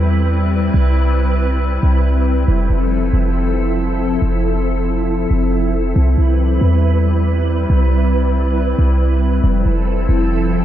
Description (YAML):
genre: hip hop, atmospheric cloud-rap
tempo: 138 BPM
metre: 4/4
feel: half-time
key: C major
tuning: A4 = 440 Hz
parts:
  - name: glassy FM pad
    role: sustained chords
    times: 0.0-10.6 s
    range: F3 to B4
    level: -18 LUFS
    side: equal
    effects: ensemble chorus, built-in reverb
  - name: clean 808-style bass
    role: bass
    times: 0.0-10.6 s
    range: F1 to E2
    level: -15 LUFS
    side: equal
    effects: none
room: light reverb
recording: none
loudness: -13 LUFS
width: side -12 dB against mid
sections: 0.0-10.6 A section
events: none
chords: 0.0 Cmaj7; 2.5 Fmaj7; 6.0 Cmaj7; 9.4 Fmaj7